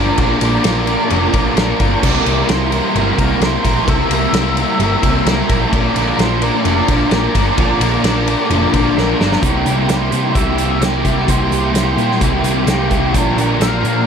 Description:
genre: rock, shoegaze and dream pop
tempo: 130 BPM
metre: 4/4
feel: straight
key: C mixolydian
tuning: A4 = 440 Hz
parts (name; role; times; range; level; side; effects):
- octave-fuzz lead guitar; melody; 0.0-14.0 s; Bb4 to F5; -25 LUFS; equal; distortion, analog delay
- overdriven electric guitar; riff; 0.0-14.1 s; Bb2 to Bb4; -15 LUFS; equal; analog chorus
- hollow-body short-scale picked electric bass; bass; 0.0-14.1 s; F1 to C3; -20 LUFS; equal; none
- loose indie drum kit; drums; 0.2-13.9 s; crash cymbal, hi-hat, kick drum, ride cymbal, snare drum; -19 LUFS; equal; none
room: wet cathedral reverb, RT60 5.6 s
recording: dreamy mix soaked in reverb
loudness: -12 LUFS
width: side -7 dB against mid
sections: 0.0-9.4 A section; 9.4-14.1 B section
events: drum fill 9.0-9.4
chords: 0.0 Bb; 2.0 C7; 5.7 Bb; 9.4 C7; 13.1 Bb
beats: | 0.18 0.65 1.11 1.57 | 2.03 2.49 2.95 3.41 | 3.88 4.34 4.80 5.26 | 5.72 6.18 6.65 7.11 | 7.57 8.03 8.50 8.96 | 9.42 9.89 10.35 10.82 | 11.28 11.74 12.21 12.67 | 13.14 13.60

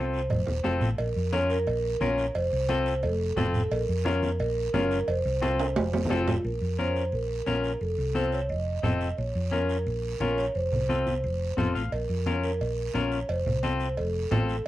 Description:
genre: latin, cumbia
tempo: 176 BPM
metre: 4/4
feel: straight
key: Bb harmonic minor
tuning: A4 = 439 Hz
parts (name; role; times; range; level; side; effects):
- vibraphone with soft mallets; second line; 0.0-14.7 s; F4 to Eb5; -30 LUFS; right 2 dB; none
- semi-hollow electric guitar; accompaniment; 0.0-14.6 s; C4 to F5; -29 LUFS; left 4 dB; none
- hollow-body short-scale fingered electric bass; bass; 0.0-14.6 s; Eb1 to F2; -30 LUFS; equal; none
- guiro; percussion; 0.1-14.7 s; none; -46 LUFS; right 5 dB; none
- congas; percussion; 0.3-14.5 s; none; -31 LUFS; equal; none
- cowbell and timbales; percussion; 0.3-6.4, 11.9-14.7 s; none; -33 LUFS; right 3 dB; none
room: moderate small room reverb, RT60 0.5 s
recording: worn, warbling old tape, cassette tape, warbly pitch drift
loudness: -25 LUFS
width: side -14 dB against mid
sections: 0.0-6.4 A section; 6.4-14.7 B section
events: drum fill 0.0-1.0, 5.6-6.4; clean electric guitar fill 11.4-11.9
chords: 0.0 F7; 1.0 Bbm; 2.4 F; 3.7 Bbm; 5.1 F; 6.4 Bbm; 7.8 F7; 9.2 Bbm; 10.6 F; 11.9 Bbm; 13.3 F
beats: 0.31 0.65 | 0.99 1.33 1.67 2.01 | 2.35 2.69 3.04 3.38 | 3.72 4.06 4.40 4.74 | 5.08 5.42 5.76 6.11 | 6.45 6.79 7.13 7.47 | 7.82 8.16 8.50 8.84 | 9.18 9.53 9.87 10.21 | 10.55 10.89 11.24 11.58 | 11.92 12.26 12.61 12.95 | 13.29 13.63 13.97 14.31 | 14.66

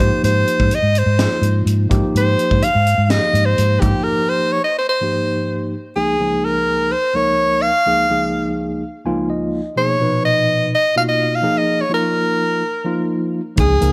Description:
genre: electric jazz fusion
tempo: 126 BPM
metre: 4/4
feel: straight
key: Db major from 6.0 s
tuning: A4 = 436 Hz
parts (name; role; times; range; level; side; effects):
- clear soprano saxophone; melody; 0.0-13.9 s; G4 to F5; -20 LUFS; equal; none
- tine electric piano; accompaniment; 0.0-13.9 s; Db2 to Ab5; -23 LUFS; equal; none
- hollow-body short-scale fingered electric bass; bass; 0.0-3.9, 13.6-13.9 s; Db2 to Ab2; -19 LUFS; equal; none
- crisp fusion drum kit; drums; 0.0-3.9, 13.6-13.9 s; hi-hat, kick drum, snare drum; -24 LUFS; equal; none
room: light reverb, studio reverb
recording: none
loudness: -17 LUFS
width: mono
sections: 0.0-6.0 A section; 6.0-13.9 B section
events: break 4.1-6.0; tine electric piano fill 8.8-9.8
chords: 0.0 Ebadd9/Ab; 6.0 Db; 9.8 Cbmaj9; 11.4 Bb5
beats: | 0.23 0.71 1.19 1.67 | 2.15 2.62 3.10 3.58 | 4.06 4.54 5.01 5.49 | 5.97 6.44 6.92 7.39 | 7.87 8.35 8.82 9.30 | 9.77 10.25 10.72 11.20 | 11.68 12.15 12.63 13.10 | 13.58

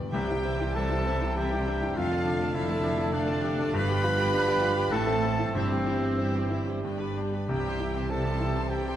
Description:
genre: classical, romantic movement for piano and orchestra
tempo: 90-105 BPM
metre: 3/4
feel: rubato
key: C major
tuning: A4 = 444 Hz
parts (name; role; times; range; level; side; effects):
- clear concert grand piano; melody; 0.0-9.0 s; C2 to G5; -31 LUFS; left 2 dB; none
- rich chamber violin section; melody; 0.0-9.0 s; C5 to B5; -40 LUFS; left 3 dB; none
- timpani; percussion; 0.0-1.0, 5.6-8.4 s; G2 to C3; -38 LUFS; equal; none
- clear oboe; second line; 0.1-9.0 s; C4 to B4; -37 LUFS; right 2 dB; none
- mellow hollow silver concert flute; second line; 0.1-9.0 s; C5 to B5; -36 LUFS; left 1 dB; none
- rich chamber violin section; second line; 0.1-9.0 s; G4 to C6; -41 LUFS; left 2 dB; none
- warm clarinet; second line; 0.1-9.0 s; C4 to B4; -32 LUFS; right 1 dB; none
- clear symphonic viola section; accompaniment; 0.1-9.0 s; E3 to B4; -37 LUFS; right 1 dB; none
- mellow French horn section; sustained chords; 0.1-9.0 s; B3 to C5; -40 LUFS; left 1 dB; none
- warm trombone section; sustained chords; 0.1-9.0 s; D3 to A3; -38 LUFS; right 4 dB; none
- rich chamber double bass section; bass; 0.1-9.0 s; F1 to C2; -34 LUFS; right 3 dB; none
- warm chamber cello section; bass; 0.1-9.0 s; F2 to C3; -36 LUFS; right 2 dB; none
room: wet scoring stage reverb, RT60 1.9 s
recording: none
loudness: -25 LUFS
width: side -11 dB against mid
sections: 0.1-9.0 A section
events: none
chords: 0.1 C; 2.0 Dm/F; 3.7 G7; 4.9 Am; 5.5 C/G; 6.8 G; 7.5 C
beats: | 0.11 0.74 1.36 | 1.97 2.54 3.12 | 3.74 4.32 4.91 | 5.55 6.19 6.84 | 7.49 8.10 8.70

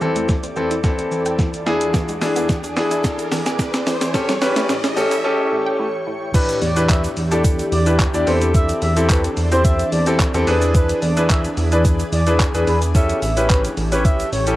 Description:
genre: dance-pop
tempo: 109 BPM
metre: 4/4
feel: straight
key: E minor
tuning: A4 = 440 Hz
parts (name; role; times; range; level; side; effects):
- clear concert grand piano; accompaniment; 0.0-14.6 s; E3 to D5; -20 LUFS; left 1 dB; sidechain pumping, cassette tape
- shimmering ambient pad; sustained chords; 0.0-14.6 s; E2 to D5; -27 LUFS; equal; chorus, built-in reverb, sidechain pumping, cassette tape
- wide unison pluck; arpeggios; 0.0-6.2 s; A2 to G#5; -28 LUFS; right 2 dB; sidechain pumping, cassette tape, analog delay
- crisp 8-bit digital drum machine; drums; 0.0-14.6 s; crash cymbal, handclaps, hi-hat, kick drum, shaker, snare drum; -20 LUFS; equal; overdrive
- riser; sound effects; 0.5-5.2 s; none; -29 LUFS; left 1 dB; none
- egg shaker; percussion; 1.9-14.6 s; none; -37 LUFS; right 6 dB; none
- expressive synth lead; melody; 6.3-14.5 s; B4 to E5; -24 LUFS; right 1 dB; chorus
- chorused synth bass; bass; 6.6-14.6 s; A1 to E2; -20 LUFS; equal; sidechain pumping
room: moderate spring reverb, RT60 2.1 s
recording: home recording on cassette, high-pass filter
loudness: -16 LUFS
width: side -16 dB against mid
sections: 0.0-6.3 A section; 6.3-14.6 B section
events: build-up 0.0-6.3; drum fill 0.0-5.2; riser 0.5-6.3; break 5.2-6.3; drop 6.3-14.6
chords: 0.0 C6/E; 1.7 E7; 4.1 A7; 6.3 Em7; 8.3 C6/E; 10.5 E7; 12.9 A7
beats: 0.29 0.84 1.39 | 1.94 2.49 3.04 3.59 | 4.14 4.69 5.24 5.79 | 6.34 6.89 7.45 8.00 | 8.55 9.10 9.65 10.20 | 10.75 11.30 11.85 12.40 | 12.95 13.50 14.05

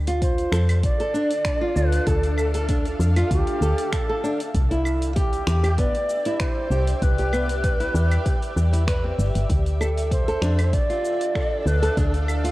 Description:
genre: organic downtempo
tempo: 97 BPM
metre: 4/4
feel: swing 54% on 16ths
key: D dorian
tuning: A4 = 441 Hz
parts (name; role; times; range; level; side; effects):
- granular cloud pad; sustained chords; 0.0-12.5 s; D4 to F5; -33 LUFS; equal; built-in reverb, sidechain pumping, shimmer reverb
- woody FM bass; bass; 0.0-12.5 s; G1 to F2; -21 LUFS; equal; sidechain pumping
- flamenco guitar; arpeggios; 0.1-12.5 s; B3 to B4; -27 LUFS; equal; digital delay, shimmer reverb
- afro-pop drum kit; drums; 0.1-12.5 s; cabasa, claves, finger snaps, hi-hat; -35 LUFS; equal; small room reverb
- low Native American-style wooden flute; melody; 0.2-12.5 s; G4 to D5; -28 LUFS; equal; digital delay, shimmer reverb
- electronic kick drum; drums; 0.2-12.1 s; none; -24 LUFS; equal; small room reverb
room: light reverb, digital ambience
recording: worn, warbling old tape, cassette tape, warbly pitch drift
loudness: -19 LUFS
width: side -18 dB against mid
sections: 0.0-12.5 A section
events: none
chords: 0.0 Dmadd9; 4.5 Cmaj7; 9.5 Dmadd9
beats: 0.22 0.83 1.45 | 2.07 2.69 3.31 3.93 | 4.55 5.17 5.78 6.40 | 7.02 7.64 8.26 8.88 | 9.49 10.11 10.73 11.35 | 11.97

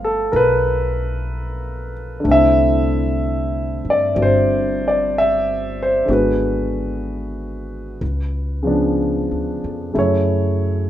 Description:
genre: jazz ballad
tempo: 62 BPM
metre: 4/4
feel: swing 67% on 8ths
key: unclear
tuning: A4 = 440 Hz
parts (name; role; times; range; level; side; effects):
- warm grand piano; accompaniment; 0.0-10.9 s; C#3 to F5; -17 LUFS; equal; none
- upright bass; bass; 0.0-10.9 s; G1 to G2; -23 LUFS; equal; none
room: light reverb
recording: minimal, uncompressed stereo recording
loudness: -16 LUFS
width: side -12 dB against mid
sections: 0.0-10.9 A section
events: none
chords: 0.0 G9; 2.2 C69; 6.1 G#m7b5; 8.0 C#7b9; 10.0 F#m7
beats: 0.33 1.29 | 2.25 3.20 4.16 5.12 | 6.08 7.04 8.01 8.98 | 9.95

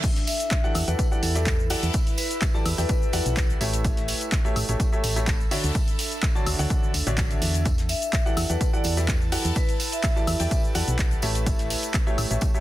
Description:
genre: piano house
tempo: 126 BPM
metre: 4/4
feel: swing 53% on 16ths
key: E dorian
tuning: A4 = 441 Hz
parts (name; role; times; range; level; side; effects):
- clear upright piano; riff; 0.0-12.6 s; D3 to A5; -31 LUFS; equal; sidechain pumping, dub echo
- damped 70s drum kit; drums; 0.0-12.5 s; hi-hat, snare drum, tambourine; -38 LUFS; left 3 dB; sidechain pumping on hats, high-pass filter on hats, high-pass filter on snare, sidechain pumping on perc, high-pass filter on perc, high-pass filter on room
- electronic kick drum; drums; 0.0-12.5 s; none; -24 LUFS; equal; none
- punchy analog drum machine; drums; 0.0-12.6 s; crash cymbal, handclaps, hi-hat, shaker, woodblock; -30 LUFS; equal; none
- tambourine; percussion; 0.0-12.5 s; none; -40 LUFS; left 1 dB; none
- airy breathy pad; texture; 0.0-12.6 s; D4 to B5; -35 LUFS; right 1 dB; chorus, sidechain pumping
- vibraphone with medium hard mallets; melody; 0.3-3.4, 7.9-10.6 s; A4 to E5; -32 LUFS; moving between left 10 dB and right 3 dB; auto-pan, dub echo
- solid FM bass; bass; 0.8-12.4 s; A1 to E2; -26 LUFS; equal; sidechain pumping
room: little or no reverb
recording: dense, heavily limited modern master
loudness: -21 LUFS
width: side -15 dB against mid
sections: 0.0-12.6 A section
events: none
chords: 0.0 Em11; 3.8 A7; 5.5 Dmaj9; 7.7 Em11; 11.5 A7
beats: | 0.04 0.51 0.99 1.47 | 1.94 2.42 2.89 3.37 | 3.85 4.32 4.80 5.27 | 5.75 6.23 6.70 7.18 | 7.66 8.13 8.61 9.08 | 9.56 10.04 10.51 10.99 | 11.46 11.94 12.42

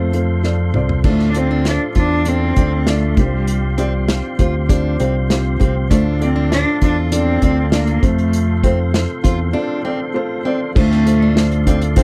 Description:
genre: piano-driven pop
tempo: 99 BPM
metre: 4/4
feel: straight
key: D minor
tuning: A4 = 440 Hz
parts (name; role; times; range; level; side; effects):
- warm cello; melody; 0.0-12.0 s; G3 to D4; -21 LUFS; equal; none
- felt-muted upright piano; accompaniment; 0.0-12.0 s; G2 to D5; -24 LUFS; equal; none
- percussive tonewheel organ; sustained chords; 0.0-12.0 s; G4 to C6; -32 LUFS; equal; overdrive, chorus vibrato, lush chorus
- fingered electric bass; bass; 0.0-12.0 s; C2 to F2; -20 LUFS; equal; none
- unplugged drum kit; drums; 0.1-12.0 s; crash cymbal, hi-hat, kick drum, snare drum, toms; -20 LUFS; equal; none
- fingerpicked plugged-in steel-string acoustic guitar; riff; 1.0-12.0 s; C4 to F4; -29 LUFS; equal; none
room: little or no reverb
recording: dry, close 1970s-style studio recording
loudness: -16 LUFS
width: mono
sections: 0.0-1.1 A section; 1.1-10.8 B section; 10.8-12.0 C section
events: drum fill 0.4-1.1; break 9.6-10.8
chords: 0.0 F; 1.1 Dm7; 3.2 Csus4; 5.9 Dm7; 8.0 F; 10.8 Dm7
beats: 0.44 | 1.05 1.66 2.27 2.87 | 3.48 4.09 4.70 5.30 | 5.91 6.52 7.12 7.73 | 8.34 8.94 9.55 10.16 | 10.76 11.37 11.97

